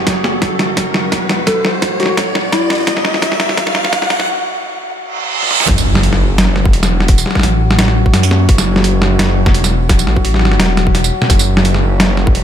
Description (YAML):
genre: half-time drum and bass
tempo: 171 BPM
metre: 4/4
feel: swing 54% on 16ths, half-time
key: F# minor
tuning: A4 = 444 Hz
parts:
  - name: dark detuned saw bass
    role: bass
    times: 0.0-12.4 s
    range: E1 to F#2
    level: -16 LUFS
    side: equal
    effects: none
  - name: riser, reverse cymbal and impact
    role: sound effects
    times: 0.0-7.1 s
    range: none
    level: -18 LUFS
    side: right 1 dB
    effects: none
  - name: metallic inharmonic drone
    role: texture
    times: 0.0-12.4 s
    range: F#3 to F#4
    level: -23 LUFS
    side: left 1 dB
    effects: chorus, built-in reverb
  - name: boom bap sampler-style drum kit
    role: drums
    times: 0.1-12.4 s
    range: hi-hat, snare drum, tambourine, toms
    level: -15 LUFS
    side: equal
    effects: none
  - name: electronic kick drum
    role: drums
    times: 0.1-12.3 s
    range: none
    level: -13 LUFS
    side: equal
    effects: none
  - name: soft struck synth lead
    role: melody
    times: 1.5-3.0 s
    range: E4 to A4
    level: -20 LUFS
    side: left 2 dB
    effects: chorus, digital delay
room: light reverb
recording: high-pass filter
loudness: -11 LUFS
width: side -9 dB against mid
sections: 0.0-5.7 A section; 5.7-12.4 B section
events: build-up 0.0-5.7; drum fill 0.0-4.3, 5.4; riser 0.0-4.3; filter sweep 0.0-5.7; break 4.3-5.7; reverse cymbal 5.0-5.7; drop 5.7-12.4; impact 5.7-7.1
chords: 0.0 Esus24